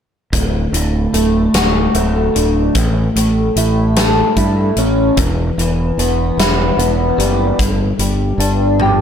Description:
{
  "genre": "quiet-loud alternative rock",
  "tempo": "50 BPM (dotted quarters)",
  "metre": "6/8",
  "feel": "straight",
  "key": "D major",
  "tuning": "A4 = 440 Hz",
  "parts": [
    { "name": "electric guitar through a small old amp", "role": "arpeggios", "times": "0.3-9.0 s", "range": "D2 to A4", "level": "-15 LUFS", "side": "left 1 dB", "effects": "analog chorus" },
    { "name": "growling fingered electric bass", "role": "bass", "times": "0.3-9.0 s", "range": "D1 to G2", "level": "-17 LUFS", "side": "equal", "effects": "overdrive" },
    { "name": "huge arena drum kit", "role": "drums", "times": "0.3-9.0 s", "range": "hi-hat, kick drum, snare drum, toms", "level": "-19 LUFS", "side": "equal", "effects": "none" }
  ],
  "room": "light reverb",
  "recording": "none",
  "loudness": "-12 LUFS",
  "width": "side -8 dB against mid",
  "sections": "0.3-9.0 A section",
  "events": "drum fill 8.8",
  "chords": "0.3 D; 2.7 A; 5.2 Emadd9; 7.6 G5"
}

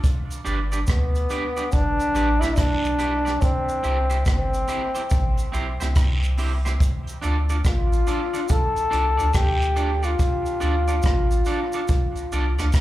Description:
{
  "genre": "roots reggae",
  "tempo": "71 BPM",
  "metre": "4/4",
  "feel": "swing 64% on 16ths",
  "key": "D dorian",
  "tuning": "A4 = 440 Hz",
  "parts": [
    { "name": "jazz brush drum kit", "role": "drums", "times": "0.0-12.8 s", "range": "hi-hat, kick drum, rim click", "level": "-23 LUFS", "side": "equal", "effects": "none" },
    { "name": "cabasa and guiro", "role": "percussion", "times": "0.0-12.8 s", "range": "none", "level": "-38 LUFS", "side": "right 2 dB", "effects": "none" },
    { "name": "electric guitar at the edge of break-up", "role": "accompaniment", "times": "0.4-12.7 s", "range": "C4 to D5", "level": "-30 LUFS", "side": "right 4 dB", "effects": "dub echo, plate reverb, slapback echo" },
    { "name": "warm sub bass", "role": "bass", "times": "0.5-12.8 s", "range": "G1 to D2", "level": "-23 LUFS", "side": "equal", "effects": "none" },
    { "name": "clear trombone", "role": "melody", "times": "0.9-12.6 s", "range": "B3 to A4", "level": "-25 LUFS", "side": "left 1 dB", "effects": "dub echo, plate reverb, slapback echo" }
  ],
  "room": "light reverb",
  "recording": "live gig heard through the venue's PA, club reverb",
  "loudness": "-20 LUFS",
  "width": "side -15 dB against mid",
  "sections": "0.0-12.8 A section",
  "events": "none",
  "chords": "0.0 G; 3.4 C; 6.8 Dm"
}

